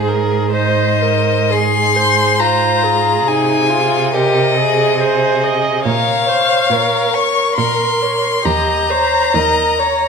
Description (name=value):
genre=classical, slow romantic movement for string quartet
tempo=68 BPM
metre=3/4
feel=uneven beats, rubato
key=unclear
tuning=A4 = 441 Hz
part: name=rich violin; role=melody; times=0.0-10.1 s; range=Eb5 to Db6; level=-16 LUFS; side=left 5 dB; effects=none
part: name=rich violin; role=second line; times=0.0-10.1 s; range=Eb4 to Eb5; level=-19 LUFS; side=left 2 dB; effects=none
part: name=rich viola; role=accompaniment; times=0.0-10.1 s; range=G4 to Eb5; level=-19 LUFS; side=right 4 dB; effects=none
part: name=rich cello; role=bass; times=0.0-10.1 s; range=Eb2 to C3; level=-20 LUFS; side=right 5 dB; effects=none
room=wet recital hall reverb, RT60 1.7 s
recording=minimal, uncompressed stereo recording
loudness=-12 LUFS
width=side -5 dB against mid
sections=0.0-10.1 A section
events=none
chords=0.0 N.C.; 0.5 Ab; 3.3 Ab/C; 5.9 Bbm; 8.5 Eb7